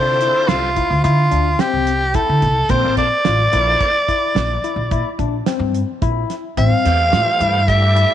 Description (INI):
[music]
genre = progressive instrumental, band music in an uneven meter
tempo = 108 BPM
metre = 7/4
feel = straight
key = unclear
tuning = A4 = 440 Hz
[part]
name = raspy soprano saxophone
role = melody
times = 0.0-8.1 s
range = F4 to F5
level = -16 LUFS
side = equal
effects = none
[part]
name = bright tonewheel organ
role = accompaniment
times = 0.0-8.1 s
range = D3 to D5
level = -26 LUFS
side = equal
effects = chorus vibrato, slow rotary speaker
[part]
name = upright bass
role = bass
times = 0.0-8.0 s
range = A1 to D3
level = -18 LUFS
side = equal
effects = none
[part]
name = barky tine electric piano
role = arpeggios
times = 0.2-8.1 s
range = C4 to F4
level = -24 LUFS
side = left 12 dB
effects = medium stereo tremolo, slapback echo
[part]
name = damped 70s drum kit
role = drums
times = 0.2-8.1 s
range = hi-hat, kick drum, snare drum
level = -24 LUFS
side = right 4 dB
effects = none
[sound]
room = light reverb, studio ambience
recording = 1960s-style stereo, nothing above 10.3 kHz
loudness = -14 LUFS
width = side -10 dB against mid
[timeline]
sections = 0.0-8.1 A section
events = none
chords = 0.0 Dm11; 2.7 Bbmaj9; 6.6 Am7